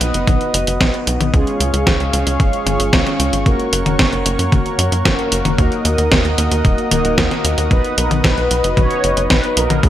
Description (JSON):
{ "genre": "italo disco", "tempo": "113 BPM", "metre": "4/4", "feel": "straight", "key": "unclear", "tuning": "A4 = 440 Hz", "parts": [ { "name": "warm analog pad", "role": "sustained chords", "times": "0.0-9.9 s", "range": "G#4 to D#6", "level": "-22 LUFS", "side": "left 1 dB", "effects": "chorus, vintage 12-bit sampler grit" }, { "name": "analog synth brass", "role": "stabs", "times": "0.0-9.9 s", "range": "G#3 to B4", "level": "-22 LUFS", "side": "right 1 dB", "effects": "chorus, digital delay" }, { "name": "tight sequencer bass", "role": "bass", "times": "0.0-9.9 s", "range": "D#1 to F#2", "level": "-19 LUFS", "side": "equal", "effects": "none" }, { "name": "detuned 8-bit digital drum machine", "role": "drums", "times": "0.0-9.9 s", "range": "hi-hat, snare drum, toms", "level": "-19 LUFS", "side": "left 1 dB", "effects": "none" }, { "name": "electronic kick drum", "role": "drums", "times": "0.3-9.9 s", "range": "none", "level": "-16 LUFS", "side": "equal", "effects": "none" }, { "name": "mellow synth brass", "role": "melody", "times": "8.0-9.9 s", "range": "G#4 to C#5", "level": "-20 LUFS", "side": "left 1 dB", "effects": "chorus, vintage 12-bit sampler grit, digital delay" } ], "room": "moderate plate reverb, RT60 2.8 s", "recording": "bright 1980s-style digital production", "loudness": "-13 LUFS", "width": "side -12 dB against mid", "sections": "0.0-9.9 A section", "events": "none", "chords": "0.0 B; 1.3 C#; 3.5 F#; 5.6 D#m; 7.7 B", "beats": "0.28 0.81 | 1.34 1.87 2.40 2.93 | 3.46 3.99 4.52 5.05 | 5.58 6.12 6.65 7.18 | 7.71 8.24 8.77 9.30 | 9.83" }